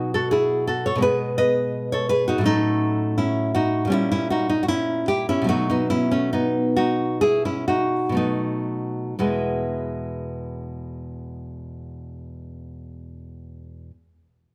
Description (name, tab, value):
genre	classical, baroque-style dance for nylon-string guitar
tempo	57-85 BPM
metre	4/4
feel	rubato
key	E major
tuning	A4 = 440 Hz
part	nylon-string guitar	solo	0.0-13.9 s	E2 to D#5	-24 LUFS	equal	none
room	moderate recital hall reverb, RT60 1.7 s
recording	close, detailed microphones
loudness	-22 LUFS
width	mono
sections	0.0-9.2 A section; 9.2-13.2 B section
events	slowing down 1.0-9.2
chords	0.0 B5; 1.0 G#m/B; 2.5 F#m/A; 3.9 A#dim7; 5.5 B7; 9.2 E